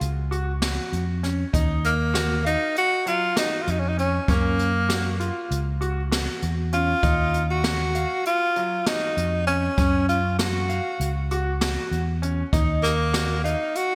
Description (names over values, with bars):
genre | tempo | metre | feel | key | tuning
progressive instrumental, band music in an uneven meter | 196 BPM (eighths) | 9/8 | straight | Eb minor | A4 = 440 Hz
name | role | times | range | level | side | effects
clear concert grand piano | arpeggios | 0.0-13.8 s | Gb3 to F5 | -32 LUFS | equal | lush chorus, digital delay
fingered electric bass | bass | 0.0-13.5 s | Db2 to Gb2 | -27 LUFS | equal | none
jazz brush drum kit | drums | 0.0-13.9 s | hi-hat, kick drum, snare drum | -29 LUFS | equal | gated reverb
breathy tenor saxophone | melody | 1.9-13.9 s | Bb3 to Gb4 | -26 LUFS | equal | digital delay
room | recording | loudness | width
moderate lush hall reverb, RT60 2.1 s | bright 1980s-style digital production | -23 LUFS | mono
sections
0.0-13.9 A section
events
none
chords
0.0 Gb5; 1.5 Ebmadd9; 4.3 Gb; 7.0 Ebmadd9; 9.8 Gb5; 12.5 Ebmadd9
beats
0.01 0.31 0.62 0.92 1.23 | 1.53 1.84 2.15 2.45 2.76 3.06 3.37 3.67 3.98 | 4.28 4.59 4.89 5.20 5.50 5.81 6.11 6.42 6.72 | 7.03 7.33 7.64 7.95 8.25 8.55 8.86 9.17 9.47 | 9.78 10.08 10.39 10.69 11.00 11.30 11.61 11.91 12.22 | 12.53 12.83 13.14 13.44 13.75